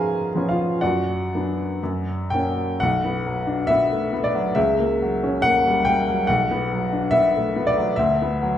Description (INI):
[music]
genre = classical, romantic character piece for solo piano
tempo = 59-74 BPM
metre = 2/4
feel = rubato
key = B minor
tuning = A4 = 440 Hz
[part]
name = clear upright piano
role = solo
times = 0.0-8.6 s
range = B1 to A#5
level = -19 LUFS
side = left 1 dB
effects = none
[sound]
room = wet recital hall reverb, RT60 1.4 s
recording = heard from further back in the room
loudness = -19 LUFS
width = side -10 dB against mid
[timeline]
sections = 0.0-2.8 A section; 2.8-8.6 B section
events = none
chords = 0.0 C#7/G#; 0.8 Bm/F#; 1.8 F#; 2.8 Bm; 4.6 F#7/C#; 6.3 Bm; 7.9 Bm/D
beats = | 0.80 1.80 | 2.78 3.67 | 4.56 5.42 | 6.27 7.11 | 7.94